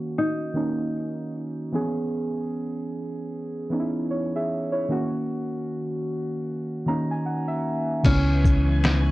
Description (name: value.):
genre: lo-fi hip hop.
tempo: 76 BPM.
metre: 4/4.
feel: swing 57% on 16ths.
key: C# dorian.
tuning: A4 = 442 Hz.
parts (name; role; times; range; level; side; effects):
nylon-string guitar; melody; 0.0-1.3, 8.1-9.1 s; C#4 to F#4; -27 LUFS; equal; low-pass filter.
muted felt-like synth keys; accompaniment; 0.0-9.1 s; C#3 to A#5; -26 LUFS; right 1 dB; chorus, cassette tape, low-pass filter.
phased string machine; sustained chords; 8.0-9.1 s; E3 to C#6; -32 LUFS; left 1 dB; ensemble chorus, phaser.
lo-fi sampler-style drum kit; drums; 8.0-9.1 s; crash cymbal, hi-hat, kick drum, shaker, snare drum; -22 LUFS; left 1 dB; none.
deep dub fingered electric bass; bass; 8.1-9.1 s; C#2; -22 LUFS; left 1 dB; none.
finger snaps; percussion; 8.8-9.0 s; none; -37 LUFS; left 7 dB; none.
room: light reverb.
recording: worn, warbling old tape, cassette tape, warbly pitch drift.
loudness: -23 LUFS.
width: side -18 dB against mid.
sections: 0.0-8.1 A section; 8.1-9.1 B section.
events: none.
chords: 0.0 D#m7; 1.7 C#m7; 4.9 D#m7; 8.1 C#m7.